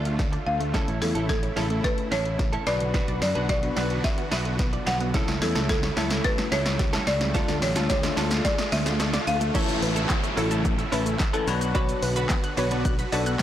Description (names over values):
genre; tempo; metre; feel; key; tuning
dance-pop; 109 BPM; 4/4; straight; A major; A4 = 440 Hz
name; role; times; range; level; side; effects
folk marimba with medium hard mallets; melody; 0.0-9.5 s; A4 to F#5; -29 LUFS; equal; dub echo
supersaw chords; sustained chords; 0.0-13.4 s; C#3 to F#4; -34 LUFS; right 2 dB; sidechain pumping
direct-recorded clean electric guitar; riff; 0.0-13.4 s; C#4 to B4; -33 LUFS; right 4 dB; ensemble chorus
fingered electric bass; bass; 0.0-13.3 s; A1 to F#2; -28 LUFS; equal; sidechain pumping
riser and downlifter; sound effects; 2.1-13.4 s; none; -35 LUFS; right 1 dB; none
wide unison pluck; arpeggios; 0.1-13.4 s; C#3 to F#6; -36 LUFS; right 2 dB; sidechain pumping, dub echo
punchy analog drum machine; drums; 0.1-13.4 s; crash cymbal, handclaps, hi-hat, kick drum, shaker, snare drum; -27 LUFS; equal; none
bell-like tine electric piano; accompaniment; 0.7-13.3 s; E3 to D5; -31 LUFS; left 7 dB; phaser
soft round pluck; melody; 9.5-13.3 s; A4 to D5; -33 LUFS; equal; chorus, sidechain pumping, dub echo
room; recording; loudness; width
light reverb; blown-out, overdriven recording, overdrive; -22 LUFS; side -11 dB against mid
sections
0.0-9.5 A section; 9.5-13.4 B section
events
build-up 0.0-9.5; drum fill 0.0-9.5; drop 9.5-13.4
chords
0.0 Dm; 0.7 A; 2.7 Bm; 5.1 A; 7.3 Dm; 9.5 A; 11.5 Bm